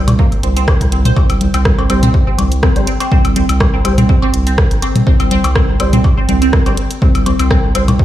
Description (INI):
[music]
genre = minimal techno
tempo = 123 BPM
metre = 4/4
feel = swing 54% on 16ths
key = unclear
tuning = A4 = 440 Hz
[part]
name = saturated sub bass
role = bass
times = 0.0-8.0 s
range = Bb1 to C2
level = -16 LUFS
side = equal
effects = sidechain pumping
[part]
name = garage drum kit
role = drums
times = 0.1-8.0 s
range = hi-hat, rim click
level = -21 LUFS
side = right 1 dB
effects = none
[part]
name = electronic toms, cowbell, congas and woodblock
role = percussion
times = 0.1-8.0 s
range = none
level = -17 LUFS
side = left 2 dB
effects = none
[part]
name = resonant blip pluck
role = riff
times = 0.2-7.8 s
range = Bb3 to C5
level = -19 LUFS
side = right 1 dB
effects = phaser, wide subtle chorus, sidechain pumping, dub echo
[part]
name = electronic kick drum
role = drums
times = 0.2-8.0 s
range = none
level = -14 LUFS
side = equal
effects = none
[part]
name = percussive organ stab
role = stabs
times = 1.9-7.8 s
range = G3 to C5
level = -24 LUFS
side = left 1 dB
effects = ensemble chorus, dub echo
[sound]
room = light reverb, digital ambience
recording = played on a big sound system in a bare room, large studio reverb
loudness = -10 LUFS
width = side -13 dB against mid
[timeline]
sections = 0.0-8.0 A section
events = none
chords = 0.0 C5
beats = 0.19 0.68 | 1.17 1.65 2.14 2.63 | 3.12 3.60 4.09 4.58 | 5.07 5.55 6.04 6.53 | 7.02 7.51 8.00